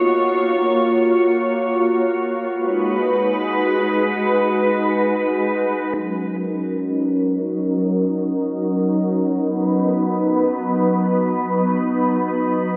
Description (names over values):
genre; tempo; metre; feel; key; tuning
hip hop; free time; none; none; Eb minor; A4 = 440 Hz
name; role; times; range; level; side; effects
glassy FM pad; solo; 0.0-12.7 s; Gb3 to Db5; -19 LUFS; equal; ensemble chorus, built-in reverb, low-pass filter, delay
room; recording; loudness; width
wet plate reverb, RT60 2.9 s; dreamy mix soaked in reverb; -19 LUFS; mono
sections
0.0-5.9 A section; 5.9-12.8 B section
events
none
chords
0.0 Gbmaj7; 2.5 Abm7; 5.9 Ebm7; 9.3 B